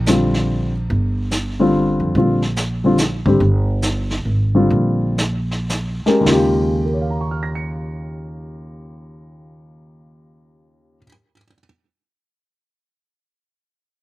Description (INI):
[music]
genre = jazz piano trio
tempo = 101-144 BPM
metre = 3/4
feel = swing 65% on 8ths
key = Eb mixolydian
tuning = A4 = 440 Hz
[part]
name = dark baby grand piano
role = melody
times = 0.0-11.6 s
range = Eb2 to Db7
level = -17 LUFS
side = left 1 dB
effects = slapback echo
[part]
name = upright bass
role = bass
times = 0.0-11.0 s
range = G1 to F2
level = -21 LUFS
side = right 1 dB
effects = none
[part]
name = vintage brush drum kit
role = drums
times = 0.1-6.9 s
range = brushed snare drum, hi-hat, kick drum, snare drum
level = -24 LUFS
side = right 1 dB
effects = none
[sound]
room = little or no reverb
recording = recorded outdoors, with no room sound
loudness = -16 LUFS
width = side -17 dB against mid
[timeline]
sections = 0.9-6.3 A section; 6.3-9.8 B section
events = slowing down 3.4-6.3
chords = 0.0 Bb; 0.9 G5; 2.2 Bb; 3.4 G5; 4.7 Bb; 6.3 Eb9